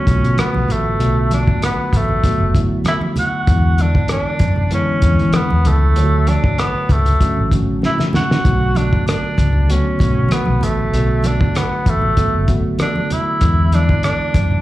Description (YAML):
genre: lush 1970s-style soul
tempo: 97 BPM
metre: 4/4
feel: swing 54% on 16ths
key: B dorian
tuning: A4 = 440 Hz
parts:
  - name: breathy tenor saxophone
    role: melody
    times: 0.0-14.6 s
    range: A3 to F#4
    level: -20 LUFS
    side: right 1 dB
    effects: slapback echo
  - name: mellow tine electric piano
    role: accompaniment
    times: 0.0-14.6 s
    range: D3 to C#5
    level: -21 LUFS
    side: left 1 dB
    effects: none
  - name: vintage muted fingered electric bass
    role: bass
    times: 0.1-14.6 s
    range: F#1 to E3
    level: -16 LUFS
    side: equal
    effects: none
  - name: cloth-damped thuddy drum kit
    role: drums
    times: 0.1-14.5 s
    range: hi-hat, kick drum, rim click, snare drum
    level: -18 LUFS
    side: equal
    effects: none
  - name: congas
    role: percussion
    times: 0.1-14.6 s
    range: none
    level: -25 LUFS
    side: right 3 dB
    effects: none
room: small room ambience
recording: live gig heard through the venue's PA, club reverb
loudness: -13 LUFS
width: side -16 dB against mid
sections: 0.0-14.6 A section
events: drum fill 7.8-8.5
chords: 0.0 Bm7; 3.5 E7; 6.0 Dmaj7; 8.5 Bm7; 13.4 E7